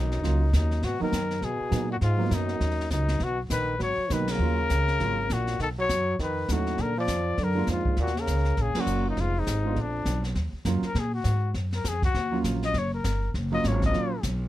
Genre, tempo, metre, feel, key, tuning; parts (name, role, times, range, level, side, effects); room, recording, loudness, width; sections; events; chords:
jazz, small-group swing and bop; 201 BPM; 4/4; swing 60% on 8ths; Eb minor; A4 = 440 Hz
breathy trumpet; melody; 0.0-14.2 s; D4 to Eb5; -30 LUFS; left 4 dB
clear trombone; second line; 0.0-10.2 s; F2 to Gb3; -33 LUFS; right 4 dB
upright bass; bass; 0.0-14.5 s; F1 to Cb3; -27 LUFS; equal
jazz brush drum kit; drums; 0.1-14.5 s; brushed snare drum, hi-hat, kick drum, ride cymbal, snare drum; -33 LUFS; equal
warm grand piano; accompaniment; 0.2-14.1 s; Gb3 to F4; -31 LUFS; right 5 dB
little or no reverb; close, detailed microphones; -24 LUFS; side -14 dB against mid
0.0-10.4 A section; 10.4-14.5 B section
band accent 4.2, 8.7; trumpet solo 10.4-14.5
0.0 Ebm7; 0.8 Abm7; 4.4 Ebm7; 5.6 B7; 6.8 Bb7; 8.0 Ebm7; 9.2 Fm7b5; 9.8 Bb; 10.4 Ebm7 (rootless)